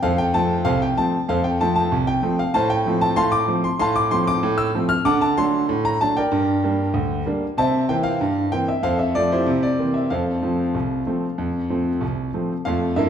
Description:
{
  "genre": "ragtime piano",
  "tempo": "95 BPM",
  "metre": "2/4",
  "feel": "straight",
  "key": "F major",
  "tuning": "A4 = 439 Hz",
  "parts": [
    { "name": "clear concert grand piano", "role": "solo", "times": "0.0-13.1 s", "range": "C2 to F6", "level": "-18 LUFS", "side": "equal", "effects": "none" }
  ],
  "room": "wet recital hall reverb, RT60 1.4 s",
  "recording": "recorded in a church or concert hall",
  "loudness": "-18 LUFS",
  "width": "side -8 dB against mid",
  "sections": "0.0-12.7 A section",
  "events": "none",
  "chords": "0.0 F; 2.5 F/A; 5.1 D; 6.3 Gm; 7.6 C7; 8.8 F; 9.5 C7; 10.1 F",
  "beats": "| 0.03 0.66 | 1.28 1.91 | 2.54 3.17 | 3.79 4.42 | 5.05 5.68 | 6.31 6.94 | 7.57 8.20 | 8.83 9.46 | 10.10 10.74 | 11.38 12.02 | 12.66"
}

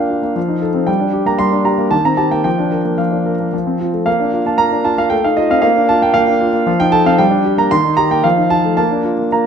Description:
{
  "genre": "classical-period piano sonatina",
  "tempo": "114 BPM",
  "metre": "3/4",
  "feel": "straight",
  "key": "Bb major",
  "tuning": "A4 = 439 Hz",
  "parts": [
    { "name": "warm concert grand piano", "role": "solo", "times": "0.0-9.5 s", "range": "Eb3 to C6", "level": "-12 LUFS", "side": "equal", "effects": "none" }
  ],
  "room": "moderate recital hall reverb, RT60 1.3 s",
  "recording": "minimal, uncompressed stereo recording",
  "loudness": "-12 LUFS",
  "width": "side -7 dB against mid",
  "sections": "0.0-9.5 A section",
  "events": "none",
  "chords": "0.4 F7; 0.9 Gm; 1.9 Cm7/Eb; 2.5 Bb/F; 3.5 F; 4.1 Bb; 5.1 F7/A; 5.6 Bb; 6.7 F7; 7.2 Gm; 7.7 Cm7/Eb; 8.3 F7; 8.8 Bb",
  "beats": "0.36 | 0.88 1.40 1.93 | 2.46 3.00 3.54 | 4.07 4.60 5.12 | 5.65 6.17 6.68 | 7.20 7.72 8.25 | 8.79 9.33"
}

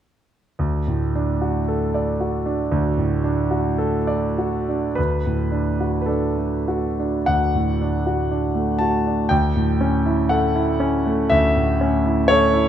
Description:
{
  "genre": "classical, romantic nocturne for solo piano",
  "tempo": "47-63 BPM",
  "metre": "4/4",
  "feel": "rubato",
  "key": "D major",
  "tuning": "A4 = 441 Hz",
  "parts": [
    { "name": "clear concert grand piano", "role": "solo", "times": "0.6-12.7 s", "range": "D2 to A5", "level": "-18 LUFS", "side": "equal", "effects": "none" }
  ],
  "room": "light reverb",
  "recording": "close, detailed microphones",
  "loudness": "-18 LUFS",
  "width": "side -10 dB against mid",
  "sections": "0.6-5.0 A section; 5.0-12.7 B section",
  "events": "none",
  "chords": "0.6 D; 9.3 A7/D",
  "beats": "| 0.59 1.69 2.73 3.78 | 4.98 6.09 7.27 8.31 | 9.31 10.32 11.32 12.30"
}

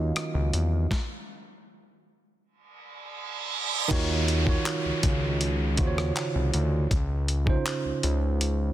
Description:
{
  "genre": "contemporary R&B",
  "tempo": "80 BPM",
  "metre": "4/4",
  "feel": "straight",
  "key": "Eb dorian",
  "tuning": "A4 = 444 Hz",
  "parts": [
    { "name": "tine electric piano", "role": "accompaniment", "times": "0.0-8.7 s", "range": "Db3 to Eb5", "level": "-29 LUFS", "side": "right 4 dB", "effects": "none" },
    { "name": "warm analog pad", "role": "sustained chords", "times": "0.0-0.9 s", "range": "Eb3 to F5", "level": "-41 LUFS", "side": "left 3 dB", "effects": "chorus" },
    { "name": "fat analog bass", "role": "bass", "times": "0.0-8.7 s", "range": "C2 to Fb2", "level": "-26 LUFS", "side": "left 1 dB", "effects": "none" },
    { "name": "dusty soul sampler-style drum kit", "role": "drums", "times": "0.2-8.6 s", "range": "crash cymbal, handclaps, hi-hat, kick drum, rim click, snare drum", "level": "-29 LUFS", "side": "left 1 dB", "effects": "soft clipping on snare" },
    { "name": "reverse cymbal and downlifter", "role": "sound effects", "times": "2.9-8.7 s", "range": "none", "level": "-32 LUFS", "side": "right 3 dB", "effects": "none" }
  ],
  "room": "digital ambience",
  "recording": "dense, heavily limited modern master",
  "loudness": "-24 LUFS",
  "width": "side -13 dB against mid",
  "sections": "0.0-3.9 A section; 3.9-8.7 B section",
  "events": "stop 0.9-3.9; reverse cymbal 2.9-3.9",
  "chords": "0.0 Ebm9; 0.9 N.C.; 3.9 Ebm9; 6.9 Dbmaj7",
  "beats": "0.16 | 0.91 1.66 2.41 3.16 | 3.91 4.66 5.41 6.16 | 6.91 7.66 8.41"
}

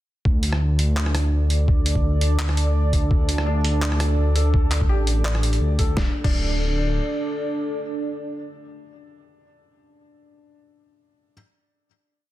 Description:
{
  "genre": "half-time drum and bass",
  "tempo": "168 BPM",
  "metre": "4/4",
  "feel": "swing 54% on 16ths, half-time",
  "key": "unclear",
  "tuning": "A4 = 440 Hz",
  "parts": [
    { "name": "dark analog pad", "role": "sustained chords", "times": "0.8-9.6 s", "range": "D4 to D5", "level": "-28 LUFS", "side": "right 2 dB", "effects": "chorus, sidechain pumping" },
    { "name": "dark detuned saw bass", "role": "bass", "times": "0.3-7.0 s", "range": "D1 to D2", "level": "-20 LUFS", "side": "equal", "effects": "tube saturation" },
    { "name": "electronic kick drum", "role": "drums", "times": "0.3-6.3 s", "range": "none", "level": "-21 LUFS", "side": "equal", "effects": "none" },
    { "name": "boom bap sampler-style drum kit", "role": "drums", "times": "0.4-6.3 s", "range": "crash cymbal, handclaps, hi-hat, rim click, snare drum", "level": "-29 LUFS", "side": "equal", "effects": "soft clipping on snare" },
    { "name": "felt-muted upright piano", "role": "arpeggios", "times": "3.5-11.3 s", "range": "D4 to D5", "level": "-33 LUFS", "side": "left 4 dB", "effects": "ping-pong delay" }
  ],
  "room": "little or no reverb",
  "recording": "dense, heavily limited modern master",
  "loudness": "-19 LUFS",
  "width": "side -15 dB against mid",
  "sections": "0.3-6.0 drop; 6.0-8.8 final chord",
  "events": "drop 0.3-6.0",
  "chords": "0.3 D5",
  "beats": "| 0.25 0.61 0.97 1.32 | 1.68 2.04 2.39 2.75 | 3.11 3.47 3.82 4.18 | 4.54 4.89 5.25 5.61 | 5.97 6.32 6.68 7.04 | 7.39 7.75 8.11 8.47"
}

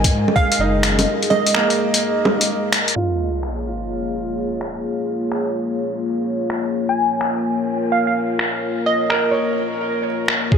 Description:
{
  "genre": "future garage",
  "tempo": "127 BPM",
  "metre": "4/4",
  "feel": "swing 66% on 16ths",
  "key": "Bb minor",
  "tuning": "A4 = 440 Hz",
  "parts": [
    { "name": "bright upright piano", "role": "accompaniment", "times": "0.0-10.6 s", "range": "Bb3 to Db5", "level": "-25 LUFS", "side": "right 3 dB", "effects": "sidechain pumping, tape echo" },
    { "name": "dark analog pad", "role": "sustained chords", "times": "0.0-10.6 s", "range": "Ab3 to F5", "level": "-22 LUFS", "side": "left 1 dB", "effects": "chorus, sidechain pumping" },
    { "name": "swelling detuned saw bass", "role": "bass", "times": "0.0-1.1, 10.5-10.6 s", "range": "Gb1 to Ab2", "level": "-21 LUFS", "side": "equal", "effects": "sidechain pumping" },
    { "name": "electronic kick drum", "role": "drums", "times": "0.0-0.5, 10.5-10.6 s", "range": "none", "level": "-16 LUFS", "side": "equal", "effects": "none" },
    { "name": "lo-fi sampler-style drum kit", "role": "drums", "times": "0.0-10.4 s", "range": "bongos, finger snaps, hi-hat", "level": "-21 LUFS", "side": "equal", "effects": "low-pass filter on hats, low-pass filter on snare, low-pass filter on perc, low-pass filter on room" },
    { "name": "glassy wavetable pluck", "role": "melody", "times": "0.4-1.7, 6.9-9.3 s", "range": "Eb5 to Ab5", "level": "-22 LUFS", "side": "right 1 dB", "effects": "chorus, tape echo" },
    { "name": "sub drop", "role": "sound effects", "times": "3.0-4.8 s", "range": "none", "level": "-27 LUFS", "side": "equal", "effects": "none" }
  ],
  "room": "moderate huge ambient reverb, RT60 7.5 s",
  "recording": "low-pass filter",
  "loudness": "-17 LUFS",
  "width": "side -7 dB against mid",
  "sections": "0.0-3.0 A section; 3.0-10.5 B section",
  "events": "band accent 2.7; impact 3.0-4.8; filter sweep 3.0-10.5",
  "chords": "0.0 Absus2; 3.0 Bbm7",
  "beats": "0.12 0.60 | 1.07 1.54 2.01 2.49 | 2.96 3.43 3.90 4.38 | 4.85 5.32 5.79 6.27 | 6.74 7.21 7.68 8.16 | 8.63 9.10 9.57 10.05 | 10.52"
}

